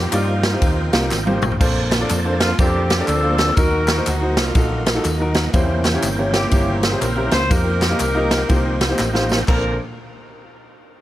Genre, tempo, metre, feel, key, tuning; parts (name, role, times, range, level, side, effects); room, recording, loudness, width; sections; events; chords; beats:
uptempo gospel; 122 BPM; 4/4; swing 63% on 8ths; Bb major; A4 = 440 Hz
warm saxophone section; melody; 0.0-9.8 s; Bb3 to C5; -24 LUFS; left 1 dB
tonewheel organ; sustained chords; 0.0-9.8 s; Db3 to A4; -26 LUFS; right 2 dB; fast rotary speaker, chorus vibrato
fingered electric bass; bass; 0.0-9.8 s; G1 to G2; -22 LUFS; equal
clear baby grand piano; accompaniment; 0.1-9.8 s; Bb1 to Eb5; -24 LUFS; equal
swinging big-band drum kit; drums; 0.1-9.6 s; crash cymbal, kick drum, ride cymbal, snare drum, toms; -20 LUFS; equal
handclaps and tambourine; percussion; 0.1-9.8 s; -31 LUFS; left 1 dB
small room ambience; -16 LUFS; side -14 dB against mid
0.0-1.6 A section; 1.6-9.5 B section; 9.5-11.0 C section
drum fill 1.1-1.6, 9.0-9.5
0.0 F9sus4; 1.6 Bbmaj9; 3.6 Ebm; 5.5 C7b9; 7.5 F9sus4; 9.5 Bbmaj9
0.13 0.62 1.11 | 1.60 2.10 2.59 3.08 | 3.57 4.06 4.55 5.05 | 5.54 6.03 6.52 7.02 | 7.51 8.00 8.50 8.99 | 9.48